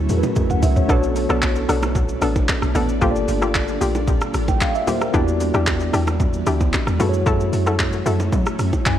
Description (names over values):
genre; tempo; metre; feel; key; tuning
amapiano; 113 BPM; 4/4; straight; B minor; A4 = 436 Hz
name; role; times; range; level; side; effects
mellow tine electric piano; accompaniment; 0.0-9.0 s; A3 to G#5; -24 LUFS; equal; medium stereo tremolo
ethereal airy pad; sustained chords; 0.0-9.0 s; E3 to F4; -28 LUFS; equal; ensemble chorus, built-in reverb, tremolo, sidechain pumping
deep log drum bass; bass; 0.0-9.0 s; G1 to F#3; -22 LUFS; equal; none
deep house drum kit; drums; 0.1-9.0 s; handclaps, hi-hat, kick drum, rim click, shaker, toms; -22 LUFS; equal; none
bongos and congas; percussion; 0.2-9.0 s; none; -30 LUFS; right 3 dB; none
hollow square pluck; stabs; 0.9-8.2 s; Bb3 to A4; -24 LUFS; left 2 dB; chorus, digital delay
room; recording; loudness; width
light reverb; worn, warbling old tape, cassette tape, warbly pitch drift; -17 LUFS; side -11 dB against mid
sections
0.0-9.0 A section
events
drum fill 0.0-0.9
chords
0.0 F#m7; 0.9 Bm7; 3.0 Gm7; 5.1 Em7; 7.0 F#m7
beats
0.36 | 0.89 1.42 1.95 2.48 | 3.02 3.55 4.08 4.61 | 5.14 5.67 6.20 6.73 | 7.26 7.79 8.33 8.86